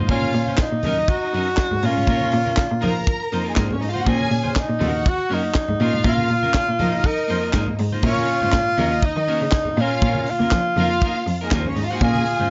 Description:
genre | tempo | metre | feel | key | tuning
disco | 121 BPM | 4/4 | straight | Bb minor | A4 = 440 Hz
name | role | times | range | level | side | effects
clean electric guitar | accompaniment | 0.0-12.5 s | Gb3 to C5 | -30 LUFS | equal | none
muted cello | bass | 0.0-12.5 s | Eb2 to Bb3 | -26 LUFS | equal | none
breathy tenor saxophone | melody | 0.1-12.5 s | Db4 to Bb4 | -25 LUFS | equal | none
warm studio violin section | second line | 0.1-12.5 s | Ab3 to Bb5 | -30 LUFS | equal | none
tight funk drum kit | drums | 0.1-12.4 s | crash cymbal, handclaps, hi-hat, kick drum, snare drum | -26 LUFS | equal | none
congas | percussion | 0.1-12.5 s | none | -34 LUFS | equal | none
room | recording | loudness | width
light reverb | nothing above 7.6 kHz | -20 LUFS | mono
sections
0.1-8.0 A section; 8.0-12.5 B section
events
none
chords
0.1 Bbm; 0.8 Ebm7; 1.8 Bbm; 2.8 F7sus4; 4.1 Bbm; 4.8 Ebm7; 5.8 Bbm; 6.8 F7sus4; 8.0 Bbm; 8.8 Ebm7; 9.8 Bbm; 10.8 F7sus4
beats
| 0.09 0.59 1.09 1.58 | 2.08 2.58 3.07 3.57 | 4.07 4.56 5.06 5.56 | 6.05 6.55 7.04 7.54 | 8.04 8.54 9.03 9.53 | 10.02 10.52 11.02 11.51 | 12.01

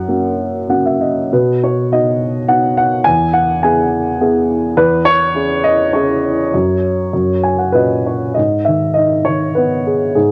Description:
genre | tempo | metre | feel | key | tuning
classical, lyrical solo piano | 91-107 BPM | 3/4 | rubato | unclear | A4 = 441 Hz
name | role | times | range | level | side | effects
dark upright piano | solo | 0.0-10.3 s | E2 to G#5 | -15 LUFS | equal | cassette tape
room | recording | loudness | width
moderate booth ambience, RT60 0.2 s | home recording on cassette | -15 LUFS | mono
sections
0.0-8.4 A section; 8.4-10.3 B section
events
upright piano fill 0.4-1.3, 7.1-8.4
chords
0.0 F#; 1.3 B; 3.1 E; 4.8 C#m/E; 6.5 N.C.; 7.1 F#; 8.4 G#m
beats
0.09 0.70 | 1.32 1.91 2.49 | 3.06 3.63 4.20 | 4.76 5.35 5.94 | 6.53 7.12 7.74 | 8.37 8.98 9.58 | 10.17

